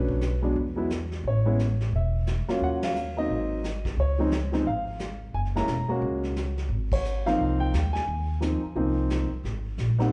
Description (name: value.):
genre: jazz piano trio.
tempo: 176 BPM.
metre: 4/4.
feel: swing 62% on 8ths.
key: Ab major.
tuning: A4 = 437 Hz.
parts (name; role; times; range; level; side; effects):
warm grand piano; melody; 0.0-10.1 s; F3 to Bb5; -30 LUFS; equal; none.
upright bass; bass; 0.0-10.1 s; E1 to E2; -30 LUFS; equal; none.
vintage brush drum kit; drums; 0.1-10.1 s; brushed snare drum, crash cymbal, hi-hat, kick drum, ride cymbal, snare drum; -38 LUFS; equal; none.
room: moderate recital hall reverb, RT60 1.5 s.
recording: recorded in a church or concert hall, nothing above 10.7 kHz.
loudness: -27 LUFS.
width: mono.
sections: 0.0-9.4 A section.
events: band accent 2.8, 6.9.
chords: 0.0 Bm7; 0.6 E5; 1.2 A; 2.6 Ebm7; 3.3 Ab7; 4.0 Db; 5.3 Gb9; 6.7 Ab69; 9.4 Absus2.